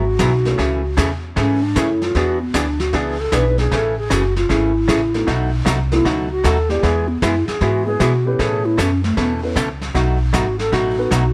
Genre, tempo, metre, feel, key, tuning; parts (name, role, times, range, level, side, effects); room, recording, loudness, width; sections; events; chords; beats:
country, western swing; 154 BPM; 4/4; swing 66% on 8ths; A major; A4 = 442 Hz
bright reedy bass ocarina; second line; 0.0-11.3 s; A3 to B4; -22 LUFS; equal
hollow-body jazz guitar; accompaniment; 0.0-11.2 s; B2 to A4; -24 LUFS; equal
upright bass; bass; 0.0-11.3 s; F#1 to B2; -23 LUFS; equal
vintage brush drum kit; drums; 0.2-11.3 s; brushed snare drum, hi-hat, kick drum, snare drum; -27 LUFS; equal
dark upright piano; accompaniment; 0.5-11.1 s; G#3 to D5; -28 LUFS; equal
light reverb; -18 LUFS; mono
0.0-11.3 A section
ocarina solo 0.0-11.3
0.0 Eadd9; 0.6 Amaj7; 2.1 E7; 3.7 Amaj7; 5.3 B7; 6.8 E; 8.4 Aadd9; 9.9 B7
0.20 | 0.59 0.98 1.37 1.76 | 2.15 2.54 2.93 3.32 | 3.71 4.10 4.49 4.88 | 5.27 5.66 6.05 6.44 | 6.83 7.22 7.61 8.00 | 8.39 8.78 9.17 9.56 | 9.95 10.34 10.72 11.11